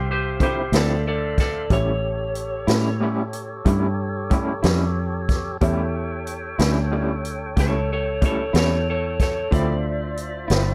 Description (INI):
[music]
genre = slow blues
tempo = 61 BPM (dotted quarters)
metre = 12/8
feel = straight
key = unclear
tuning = A4 = 441 Hz
[part]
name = electric slide guitar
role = melody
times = 0.0-10.7 s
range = G4 to D5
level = -28 LUFS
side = equal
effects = none
[part]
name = tonewheel organ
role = sustained chords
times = 0.0-10.7 s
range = F4 to G5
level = -35 LUFS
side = equal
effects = slow rotary speaker
[part]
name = fingered electric bass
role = bass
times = 0.0-10.7 s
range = G1 to A2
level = -26 LUFS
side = equal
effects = none
[part]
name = electric guitar through a small old amp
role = accompaniment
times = 0.4-10.7 s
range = A2 to E4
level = -28 LUFS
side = equal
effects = tremolo
[part]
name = swinging big-band drum kit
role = drums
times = 0.4-10.7 s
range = hi-hat, kick drum, snare drum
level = -25 LUFS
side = equal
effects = none
[part]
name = clear concert grand piano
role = accompaniment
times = 1.7-10.7 s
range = F4 to E5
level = -35 LUFS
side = equal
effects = none
[sound]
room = little or no reverb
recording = dark, warm production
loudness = -22 LUFS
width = mono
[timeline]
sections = 0.0-10.7 A section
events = electric slide guitar solo 0.0-10.7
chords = 0.0 Dm9; 1.7 A7; 9.5 Dm9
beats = 0.73 | 1.71 2.69 3.67 4.64 | 5.62 6.60 7.57 8.55 | 9.53 10.50